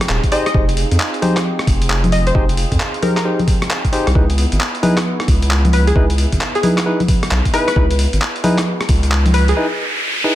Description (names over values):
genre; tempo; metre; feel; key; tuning
UK garage, two-step garage; 133 BPM; 4/4; swing 64% on 16ths; unclear; A4 = 437 Hz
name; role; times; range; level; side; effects
warm analog pad; sustained chords; 0.0-9.5 s; Cb4 to Ab4; -28 LUFS; right 2 dB; chorus, sidechain pumping
boom bap sampler-style drum kit; drums; 0.0-9.6 s; congas, handclaps, hi-hat, rim click; -19 LUFS; equal; none
saturated sub bass; bass; 0.1-9.5 s; Eb1 to F2; -15 LUFS; equal; none
electronic kick drum; drums; 0.2-9.0 s; none; -16 LUFS; equal; none
glassy wavetable pluck; melody; 0.3-9.6 s; Ab4 to Eb5; -22 LUFS; left 1 dB; chorus, digital delay
barky tine electric piano; stabs; 0.3-10.3 s; Eb4 to C5; -22 LUFS; equal; digital delay
riser; sound effects; 8.7-10.3 s; none; -22 LUFS; equal; none
room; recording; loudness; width
digital ambience; none; -13 LUFS; side -14 dB against mid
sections
0.0-10.3 A section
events
riser 8.7-10.3; break 9.6-10.3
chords
0.0 Fm7; 4.2 Dbm7